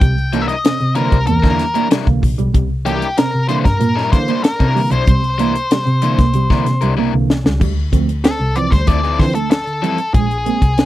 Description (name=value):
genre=funk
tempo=95 BPM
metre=4/4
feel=straight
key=C mixolydian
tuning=A4 = 439 Hz
part: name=octave-fuzz lead guitar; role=melody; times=0.0-10.9 s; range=G4 to G5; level=-20 LUFS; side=left 2 dB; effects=distortion
part: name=electric guitar at the edge of break-up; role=riff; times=0.0-10.9 s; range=G3 to C4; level=-23 LUFS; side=right 8 dB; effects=analog chorus
part: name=barky tine electric piano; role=stabs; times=0.0-10.8 s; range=Bb2 to C4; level=-23 LUFS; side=moving between right 2 dB and right 8 dB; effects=auto-pan
part: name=warm double bass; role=bass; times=0.0-10.8 s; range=Bb1 to D3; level=-18 LUFS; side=equal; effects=none
part: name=tight funk drum kit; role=drums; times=0.0-10.9 s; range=crash cymbal, hi-hat, kick drum, snare drum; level=-14 LUFS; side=equal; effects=none
part: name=overdriven electric guitar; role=accompaniment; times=0.3-10.0 s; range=F3 to C5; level=-22 LUFS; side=left 9 dB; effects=none
room=little or no reverb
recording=dry, close 1970s-style studio recording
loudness=-13 LUFS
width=side -15 dB against mid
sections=0.0-7.6 A section; 7.6-10.9 B section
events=drum fill 7.0-7.6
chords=0.0 C9; 7.6 Dm9; 10.1 Bb7sus2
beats=| 0.01 0.65 1.28 1.91 | 2.54 3.18 3.81 4.44 | 5.08 5.71 6.34 6.98 | 7.61 8.24 8.88 9.51 | 10.14 10.78